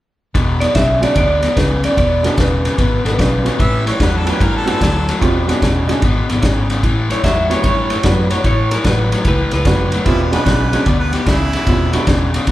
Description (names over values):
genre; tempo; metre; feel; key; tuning
electric blues shuffle; 148 BPM; 4/4; swing 66% on 8ths; unclear; A4 = 439 Hz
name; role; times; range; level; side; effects
overdriven electric guitar; riff; 0.3-12.5 s; E2 to F#3; -19 LUFS; left 3 dB; none
vintage drum kit; drums; 0.3-12.5 s; kick drum, ride cymbal, snare drum; -18 LUFS; equal; none
vintage muted fingered electric bass; bass; 0.4-12.5 s; E1 to G2; -19 LUFS; equal; none
electric guitar through a small old amp; melody; 0.6-3.8, 7.1-10.3 s; A#4 to E5; -19 LUFS; right 1 dB; spring reverb
clear upright piano; accompaniment; 1.0-12.3 s; G3 to F#4; -22 LUFS; right 3 dB; none
clear harmonica; second line; 3.6-5.2, 10.1-12.1 s; E4 to E5; -23 LUFS; right 2 dB; overdrive
room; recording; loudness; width
moderate large studio reverb, RT60 1.1 s; band playing live in one room; -13 LUFS; side -15 dB against mid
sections
0.3-12.5 A section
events
none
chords
0.3 E13; 3.6 A13; 5.2 E13; 6.8 A13; 10.1 E13